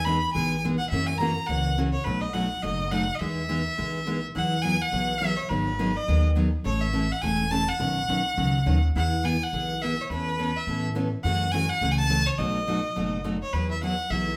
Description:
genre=country, western swing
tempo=209 BPM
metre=4/4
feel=swing 62% on 8ths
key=E major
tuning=A4 = 435 Hz
part: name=clear fiddle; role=melody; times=0.0-14.4 s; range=B4 to B5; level=-30 LUFS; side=equal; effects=none
part: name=upright bass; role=bass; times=0.0-14.4 s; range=E1 to A2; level=-31 LUFS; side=equal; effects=none
part: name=picked steel-string acoustic guitar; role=accompaniment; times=0.1-14.3 s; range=B2 to A4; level=-30 LUFS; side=equal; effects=none
room=moderate large studio reverb, RT60 1.1 s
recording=band playing live in one room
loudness=-26 LUFS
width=mono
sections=0.0-4.4 A section; 4.4-13.5 B section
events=none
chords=0.0 Emaj7; 0.9 F#7; 2.1 B7; 3.2 Emaj7; 4.4 Eadd9; 5.5 G#m7; 6.7 A; 7.8 Badd9; 9.0 E; 10.1 Aadd9/E; 11.2 F#m7; 12.4 B7; 13.5 Eadd9

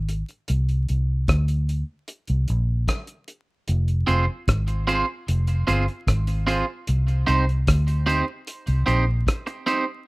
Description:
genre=roots reggae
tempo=75 BPM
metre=4/4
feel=straight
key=C minor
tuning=A4 = 440 Hz
part: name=vintage muted fingered electric bass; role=bass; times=0.0-9.2 s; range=F1 to D2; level=-21 LUFS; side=equal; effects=none
part: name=cloth-damped thuddy drum kit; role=drums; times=0.1-9.9 s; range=hi-hat, kick drum, rim click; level=-25 LUFS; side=equal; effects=none
part: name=electric guitar at the edge of break-up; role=accompaniment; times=4.1-9.8 s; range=C4 to C5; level=-24 LUFS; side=right 3 dB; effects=tape echo
room=light reverb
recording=rough home demo mix, vinyl crackle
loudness=-20 LUFS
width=side -23 dB against mid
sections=0.0-10.1 A section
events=none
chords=0.5 Bbadd9; 3.7 Fm; 6.9 Cm

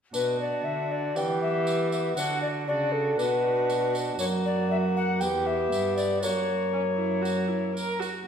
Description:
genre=classical, renaissance-style consort dance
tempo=118 BPM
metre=4/4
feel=straight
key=unclear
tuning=A4 = 440 Hz
part: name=tenor recorder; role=melody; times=0.1-7.7 s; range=A4 to G5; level=-28 LUFS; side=left 3 dB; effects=none
part: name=warm viola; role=second line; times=0.1-8.3 s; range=C#4 to A#4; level=-32 LUFS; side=right 6 dB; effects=none
part: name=mellow bassoon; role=accompaniment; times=0.1-8.0 s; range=A#3 to D4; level=-31 LUFS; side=left 1 dB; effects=none
part: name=warm cello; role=bass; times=0.1-8.1 s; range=E2 to E3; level=-31 LUFS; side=right 2 dB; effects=none
part: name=tambourine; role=percussion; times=0.1-8.3 s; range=none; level=-39 LUFS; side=right 1 dB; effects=none
room=wet stone room reverb, RT60 1.3 s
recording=minimal, uncompressed stereo recording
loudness=-24 LUFS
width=side -7 dB against mid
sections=0.1-8.3 A section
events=none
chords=0.1 Bm; 1.2 Em; 2.2 D; 3.2 Bm; 4.2 F#; 5.2 Em; 6.2 F#

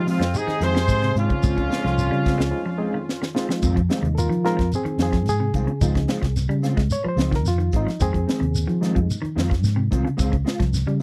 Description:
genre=afrobeat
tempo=110 BPM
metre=4/4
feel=straight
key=unclear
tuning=A4 = 441 Hz
part: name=clear horn section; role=melody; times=0.0-3.3 s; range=F4 to C5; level=-28 LUFS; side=equal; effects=none
part: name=breathy trumpet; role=second line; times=0.0-3.3 s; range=C4 to Ab4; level=-34 LUFS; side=equal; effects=none
part: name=mellow trombone section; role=second line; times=0.0-3.3 s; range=F2 to C3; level=-36 LUFS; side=equal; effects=none
part: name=barky reed electric piano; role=accompaniment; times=0.0-11.0 s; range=F3 to Db5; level=-30 LUFS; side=equal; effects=overdrive, fast tremolo
part: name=clean electric guitar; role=arpeggios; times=0.0-11.0 s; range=C3 to Ab3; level=-32 LUFS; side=equal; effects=tape echo
part: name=fingered electric bass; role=bass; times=0.0-11.0 s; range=Ab1 to F3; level=-25 LUFS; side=equal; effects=none
part: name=mellow electric guitar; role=stabs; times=0.1-11.0 s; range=Eb3 to F4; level=-30 LUFS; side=equal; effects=ensemble chorus
part: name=tight funk drum kit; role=drums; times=0.1-11.0 s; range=hi-hat, kick drum, snare drum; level=-27 LUFS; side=equal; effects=none
part: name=shekere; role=percussion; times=0.1-10.9 s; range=none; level=-30 LUFS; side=equal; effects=none
room=light reverb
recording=dry, close 1970s-style studio recording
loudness=-22 LUFS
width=mono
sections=0.0-3.6 A section; 3.6-11.0 B section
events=break 2.5-3.6; drum fill 3.1-3.6; reed electric piano solo 3.6-11.0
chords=0.0 Fm7; 1.4 Dbmaj7; 8.0 Fm7; 10.2 Dbmaj7

